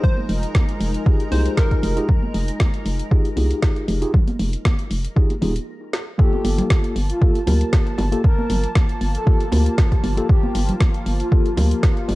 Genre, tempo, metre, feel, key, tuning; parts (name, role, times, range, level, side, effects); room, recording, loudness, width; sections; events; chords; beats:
deep house; 117 BPM; 4/4; swing 54% on 16ths; A4 = 438 Hz
plucky unison lead; melody; 0.0-2.0 s; Bb4 to C5; -30 LUFS; left 1 dB; analog delay
warm analog pad; sustained chords; 0.0-12.2 s; F3 to A5; -31 LUFS; left 1 dB; wide subtle chorus, sidechain pumping
electronic kick drum; drums; 0.0-11.9 s; -16 LUFS; equal; vintage 12-bit sampler grit
congas and bongos; percussion; 0.0-12.2 s; -28 LUFS; right 2 dB
soft string machine; texture; 0.0-5.7 s; Bb4 to Bb5; -38 LUFS; equal; phaser, ensemble chorus, sidechain pumping
hollow knocking FM bass; bass; 0.3-12.2 s; Eb1 to D2; -20 LUFS; equal; sidechain pumping
deep house drum kit; drums; 0.3-12.2 s; hi-hat, snare drum; -29 LUFS; equal; vintage 12-bit sampler grit
mellow tine electric piano; stabs; 1.1-12.2 s; Bb3 to Bb4; -26 LUFS; left 1 dB; medium stereo tremolo, sidechain pumping, analog delay
breathy flute-like synth lead; melody; 6.2-11.5 s; F4 to Bb4; -29 LUFS; left 1 dB; lush chorus, analog delay
digital ambience; -17 LUFS; side -19 dB against mid
0.0-6.2 A section; 6.2-12.2 B section
break 5.7-6.2; drum fill 5.9; drop 6.2-12.2
0.0 Fm9; 6.2 Gm9
| 0.04 0.55 1.06 1.57 | 2.09 2.60 3.11 3.63 | 4.14 4.65 5.17 5.68 | 6.19 6.70 7.22 7.73 | 8.24 8.75 9.27 9.78 | 10.29 10.81 11.32 11.83